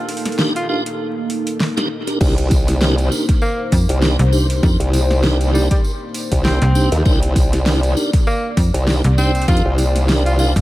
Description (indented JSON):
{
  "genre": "glitch hop",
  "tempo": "99 BPM",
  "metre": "4/4",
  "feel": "swing 56% on 16ths",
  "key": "C dorian",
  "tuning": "A4 = 440 Hz",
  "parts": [
    { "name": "dark analog pad", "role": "sustained chords", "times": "0.0-10.6 s", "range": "Bb3 to D5", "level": "-26 LUFS", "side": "equal", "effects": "chorus, phaser, sidechain pumping" },
    { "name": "pop drum kit", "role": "drums", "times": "0.1-10.6 s", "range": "crash cymbal, hi-hat, snare drum", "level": "-24 LUFS", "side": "equal", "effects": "dub echo" },
    { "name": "tonewheel organ", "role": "stabs", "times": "0.4-10.5 s", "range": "D4 to C5", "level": "-24 LUFS", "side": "right 1 dB", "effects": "overdrive, chorus vibrato, slow rotary speaker, sidechain pumping, dub echo" },
    { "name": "warm tenor saxophone", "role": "melody", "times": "0.6-10.5 s", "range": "G3 to F4", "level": "-25 LUFS", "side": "equal", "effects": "vintage 12-bit sampler grit, dub echo" },
    { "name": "formant-sweep wobble bass", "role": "bass", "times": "2.2-10.5 s", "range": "C2 to Eb2", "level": "-16 LUFS", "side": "equal", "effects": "chorus" },
    { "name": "electronic kick drum", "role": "drums", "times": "2.2-10.6 s", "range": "none", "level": "-16 LUFS", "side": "equal", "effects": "none" },
    { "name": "tambourine", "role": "percussion", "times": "2.2-10.6 s", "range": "none", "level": "-32 LUFS", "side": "right 2 dB", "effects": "dub echo" },
    { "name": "slap-like FM bass", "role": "bass", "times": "3.7-10.6 s", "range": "C2 to F2", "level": "-15 LUFS", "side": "equal", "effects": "none" }
  ],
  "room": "light reverb, digital ambience",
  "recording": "echo-heavy mix, vinyl crackle",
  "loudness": "-14 LUFS",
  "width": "side -16 dB against mid",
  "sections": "0.0-10.6 A section",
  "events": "break 0.0-2.2",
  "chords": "0.0 Cm7"
}